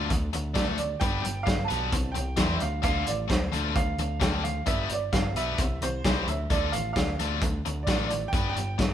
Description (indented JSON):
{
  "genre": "indie rock",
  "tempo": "131 BPM",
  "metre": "4/4",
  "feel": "straight",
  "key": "D dorian",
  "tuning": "A4 = 440 Hz",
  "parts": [
    { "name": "high-gain distorted guitar", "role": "riff", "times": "0.0-8.8 s", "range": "D3 to C5", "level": "-32 LUFS", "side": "left 6 dB", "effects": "distortion" },
    { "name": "picked electric bass", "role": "bass", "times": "0.0-8.9 s", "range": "G1 to E2", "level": "-31 LUFS", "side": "equal", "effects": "none" },
    { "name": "loose indie drum kit", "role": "drums", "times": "0.1-8.9 s", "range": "hi-hat, kick drum, snare drum", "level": "-28 LUFS", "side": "equal", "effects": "none" },
    { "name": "bright upright piano", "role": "melody", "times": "0.5-8.9 s", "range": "C5 to A5", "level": "-32 LUFS", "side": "right 5 dB", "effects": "none" }
  ],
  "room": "light reverb",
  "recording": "band playing live in one room",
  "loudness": "-25 LUFS",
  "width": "side -10 dB against mid",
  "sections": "0.0-8.9 A section",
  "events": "none",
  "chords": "0.0 Dm; 1.0 G; 1.9 C; 2.6 Dm; 4.7 G; 5.6 C; 6.3 Dm; 8.3 G"
}